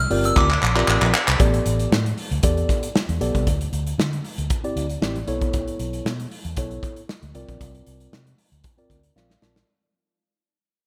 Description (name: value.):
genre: early-eighties boogie funk.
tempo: 116 BPM.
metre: 4/4.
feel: straight.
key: unclear.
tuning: A4 = 438 Hz.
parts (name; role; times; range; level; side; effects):
delicate synth tine bell; melody; 0.0-1.1 s; D6 to F6; -28 LUFS; equal; chorus, phaser, digital delay.
vintage muted fingered electric bass; bass; 0.0-9.6 s; G1 to D3; -27 LUFS; equal; none.
mellow tine electric piano; accompaniment; 0.1-9.7 s; B3 to A5; -29 LUFS; equal; none.
modern studio drum kit; drums; 0.1-9.7 s; handclaps, hi-hat, kick drum, snare drum; -25 LUFS; equal; none.
room: light reverb, studio ambience.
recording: bright 1980s-style digital production.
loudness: -22 LUFS.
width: mono.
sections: 0.0-1.4 A section; 1.4-9.7 B section.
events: drum fill 0.4-1.4, 9.2-9.7; fade-out 1.4-9.7; tine electric piano fill 8.9-9.7.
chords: 0.0 C9sus4; 1.4 A9sus4; 3.5 D9sus4; 5.3 B9sus4; 7.3 C9sus4.